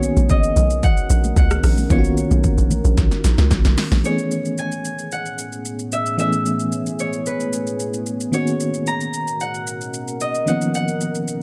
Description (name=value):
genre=amapiano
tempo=112 BPM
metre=4/4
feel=straight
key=unclear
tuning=A4 = 440 Hz
part: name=concert harp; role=melody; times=0.0-11.4 s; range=B4 to A#5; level=-28 LUFS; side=equal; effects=digital delay
part: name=FM electric piano with tremolo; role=accompaniment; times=0.0-11.4 s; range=D#3 to G#4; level=-26 LUFS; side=equal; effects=none
part: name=deep dark ambient pad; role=sustained chords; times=0.0-11.4 s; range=A2 to D#5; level=-31 LUFS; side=equal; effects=chorus, built-in reverb, sidechain pumping
part: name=tight log drum bass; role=bass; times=0.0-4.0 s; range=A#1 to C#2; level=-19 LUFS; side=equal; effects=none
part: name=deep house drum kit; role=drums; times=0.0-11.4 s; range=hi-hat, kick drum, rim click, shaker, snare drum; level=-24 LUFS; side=equal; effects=overdrive
part: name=congas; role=percussion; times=0.2-4.0 s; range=none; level=-30 LUFS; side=equal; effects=none
room=little or no reverb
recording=dark, warm production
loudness=-20 LUFS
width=mono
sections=0.0-4.0 A section; 4.0-11.4 B section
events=drop 0.0-4.0; drum fill 3.0-4.0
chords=0.0 Bmaj9; 4.0 Amaj9; 8.3 Bmaj9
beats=0.30 0.83 1.37 | 1.90 2.44 2.97 3.51 | 4.05 4.58 5.12 5.65 | 6.19 6.72 7.26 7.80 | 8.33 8.87 9.40 9.94 | 10.47 11.01